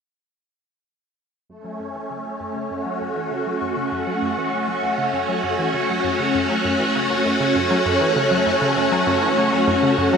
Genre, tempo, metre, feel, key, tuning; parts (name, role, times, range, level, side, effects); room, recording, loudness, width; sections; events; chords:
ambient, sequencer-driven space music; 99 BPM; 4/4; straight; F# minor; A4 = 435 Hz
phased string machine; sustained chords; 1.5-10.2 s; A3 to F#4; -19 LUFS; equal; ensemble chorus, phaser
analog pluck; riff; 1.5-10.2 s; F#2 to F#3; -27 LUFS; equal; chorus, analog delay
bubbling stepped-filter texture; texture; 3.6-10.2 s; C#4 to C#5; -28 LUFS; right 1 dB; chorus, built-in reverb
wet huge ambient reverb, RT60 8.0 s; -18 LUFS; side -6 dB against mid
1.5-10.2 A section
fade-in on synth arpeggio sound 1.5-10.2; fade-in on synth texture 1.5-10.2
1.5 F#m